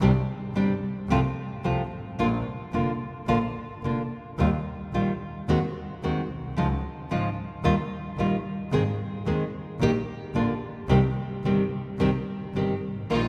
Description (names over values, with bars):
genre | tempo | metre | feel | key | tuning
tango | 110 BPM | 4/4 | rubato | unclear | A4 = 441 Hz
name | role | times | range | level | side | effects
nylon-string guitar | accompaniment | 0.0-13.2 s | C3 to Ab4 | -29 LUFS | equal | none
rich double bass | bass | 0.0-13.3 s | F1 to Eb2 | -32 LUFS | equal | none
clear symphonic string section | stabs | 13.1-13.3 s | Bb3 to F4 | -31 LUFS | equal | none
room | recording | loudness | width
wet cathedral reverb, RT60 5.4 s | recorded in a church or concert hall | -27 LUFS | mono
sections
0.0-13.3 A section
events
none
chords
0.0 Csus2; 1.1 F/C; 2.2 Bb; 4.4 Ebadd9; 5.5 Ab7/Eb; 6.6 Dbadd9; 7.7 Ebadd9; 8.7 Ab; 9.8 Eb/Bb; 10.4 Bb; 10.9 Cm